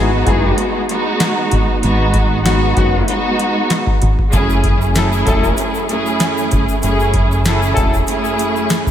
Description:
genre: hip hop, boom-bap hip-hop.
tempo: 96 BPM.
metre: 4/4.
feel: swing 55% on 16ths.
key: F# dorian.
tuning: A4 = 440 Hz.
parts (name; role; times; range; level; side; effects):
warm studio string section; accompaniment; 0.0-8.9 s; F#2 to G#4; -16 LUFS; right 1 dB; high-pass filter, low-pass filter.
dark horn section; stabs; 0.0-7.9 s; D#3 to A4; -23 LUFS; left 4 dB; high-pass filter, low-pass filter, ping-pong delay.
deep dub fingered electric bass; bass; 0.0-8.0 s; E1 to G#1; -17 LUFS; equal; none.
booming analog drum machine; drums; 0.3-8.9 s; hi-hat, kick drum, snare drum; -18 LUFS; equal; none.
egg shaker; percussion; 4.3-8.9 s; none; -34 LUFS; left 9 dB; none.
room: moderate church reverb, RT60 2.8 s.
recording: dreamy mix soaked in reverb.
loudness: -13 LUFS.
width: side -10 dB against mid.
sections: 0.0-8.9 A section.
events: none.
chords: 0.0 Emaj7; 1.8 G#m7; 4.3 F#m7.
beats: 0.58 1.20 | 1.83 2.45 3.08 3.70 | 4.33 4.95 5.58 6.20 | 6.83 7.45 8.08 8.70.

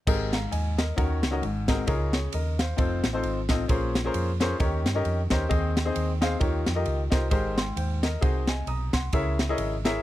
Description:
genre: uptempo gospel.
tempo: 132 BPM.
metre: 4/4.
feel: swing 57% on 8ths.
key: Ab major.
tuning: A4 = 441 Hz.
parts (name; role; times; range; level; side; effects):
clear grand piano; accompaniment; 0.1-10.0 s; Ab2 to Eb6; -28 LUFS; left 2 dB; none.
hollow-body short-scale fingered electric bass; bass; 0.1-10.0 s; F1 to G2; -28 LUFS; right 1 dB; none.
crisp fusion drum kit; drums; 0.1-9.9 s; crash cymbal, kick drum, ride cymbal, snare drum; -27 LUFS; equal; none.
room: little or no reverb.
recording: dry, close 1970s-style studio recording.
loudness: -24 LUFS.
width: side -14 dB against mid.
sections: 0.1-10.0 A section.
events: none.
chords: 0.1 Abmaj9; 1.0 Ebm7; 1.4 Ab9; 1.9 Db69; 2.8 F7; 3.7 Bbm9; 4.6 Eb7; 5.5 Ab/Eb; 6.4 Eb9; 7.3 Abmaj9; 8.2 Ab7/C; 9.1 Dbm6.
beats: | 0.07 0.52 0.97 1.43 | 1.88 2.33 2.78 3.23 | 3.69 4.14 4.59 5.05 | 5.50 5.96 6.41 6.86 | 7.32 7.77 8.22 8.68 | 9.13 9.59.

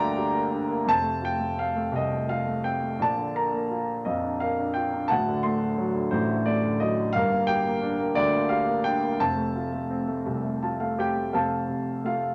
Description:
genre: classical, lyrical solo piano.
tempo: 57 BPM (dotted quarters).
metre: 6/8.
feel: rubato.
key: unclear.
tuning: A4 = 440 Hz.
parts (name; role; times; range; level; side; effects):
warm concert grand piano; solo; 0.0-12.3 s; D1 to C6; -26 LUFS; equal; none.
room: moderate studio reverb, RT60 0.5 s.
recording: tube saturation.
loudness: -26 LUFS.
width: mono.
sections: 0.0-11.3 A section; 11.3-12.3 B section.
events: grand piano fill 10.3-11.3.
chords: 0.0 Gm; 0.9 F; 3.0 Bb; 5.1 D; 7.1 Gm; 9.2 F.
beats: | 0.89 1.94 | 3.00 4.05 | 5.09 6.12 | 7.15 8.17 | 9.20 10.26 | 11.33.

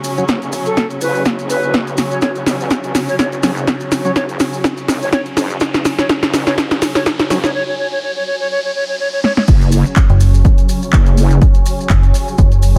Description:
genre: bass house.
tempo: 124 BPM.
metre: 4/4.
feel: swing 55% on 16ths.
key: unclear.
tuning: A4 = 439 Hz.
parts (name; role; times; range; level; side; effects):
rich symphonic string section; sustained chords; 0.0-12.8 s; C#3 to C#4; -27 LUFS; equal; sidechain pumping, low-pass filter.
house drum kit; drums; 0.0-12.7 s; crash cymbal, handclaps, hi-hat, snare drum; -20 LUFS; equal; small room ambience.
maracas; percussion; 0.0-12.8 s; none; -33 LUFS; equal; none.
riser; sound effects; 0.9-9.5 s; none; -33 LUFS; equal; none.
granular cloud pad; texture; 0.0-12.8 s; F#4 to G#5; -30 LUFS; equal; built-in reverb, sidechain pumping.
percussive organ stab; stabs; 0.2, 3.4-4.1, 7.3-7.4 s; F#3 to C#5; -26 LUFS; equal; none.
wobble bass; bass; 0.3-11.4 s; E1 to A1; -21 LUFS; equal; chorus, sidechain pumping, high-pass filter.
electronic kick drum; drums; 0.3-12.5 s; none; -15 LUFS; equal; high-pass filter on kick, small room ambience.
breathy bright silver concert flute; melody; 0.7-9.4 s; A4 to C#5; -23 LUFS; equal; dub echo.
metallic FM bass; bass; 10.1-12.8 s; F#1; -13 LUFS; equal; sidechain pumping.
room: light reverb, digital ambience.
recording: none.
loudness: -15 LUFS.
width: mono.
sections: 0.0-9.5 A section; 9.5-12.8 B section.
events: build-up 0.0-9.5; drum fill 0.0-7.5, 9.2; riser 0.9-9.5; break 7.5-9.5; drop 9.5-12.8.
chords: 0.0 F#5.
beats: 0.29 0.77 1.25 | 1.74 2.22 2.71 3.19 | 3.67 4.16 4.64 5.13 | 5.61 6.09 6.58 7.06 | 7.54 8.03 8.51 9.00 | 9.48 9.96 10.45 10.93 | 11.42 11.90 12.38.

